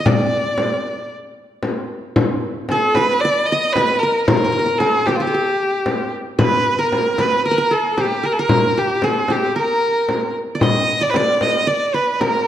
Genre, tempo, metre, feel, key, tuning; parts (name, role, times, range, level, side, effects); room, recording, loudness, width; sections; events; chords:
Arabic maqam ensemble; 114 BPM; 4/4; straight; G maqam saba; A4 = 440 Hz
warm violin; melody; 0.0-12.5 s; F4 to Eb5; -18 LUFS; right 1 dB
qanun; second line; 0.0-12.5 s; G4 to Eb5; -23 LUFS; right 1 dB
frame drum; percussion; 0.1-12.3 s; -20 LUFS; left 2 dB
wet recital hall reverb, RT60 1.6 s; dark, warm production; -15 LUFS; side -10 dB against mid
0.0-6.4 A section; 6.4-12.5 B section